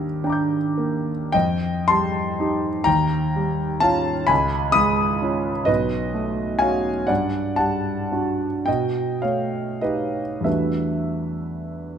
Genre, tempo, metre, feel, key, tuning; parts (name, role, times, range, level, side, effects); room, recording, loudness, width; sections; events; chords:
classical, impressionist solo piano; 31-44 BPM (dotted quarters); 6/8; rubato; E minor from 7.1 s; A4 = 440 Hz
warm concert grand piano; solo; 0.0-12.0 s; B1 to G6; -20 LUFS; equal
moderate recital hall reverb, RT60 1.7 s; close, detailed microphones; -20 LUFS; side -8 dB against mid
0.0-12.0 A section
0.0 Ebmaj7; 1.3 F9; 2.9 Eb9; 4.3 C#9; 5.7 B9; 7.1 Gsus2; 8.7 Baug7; 10.5 Em11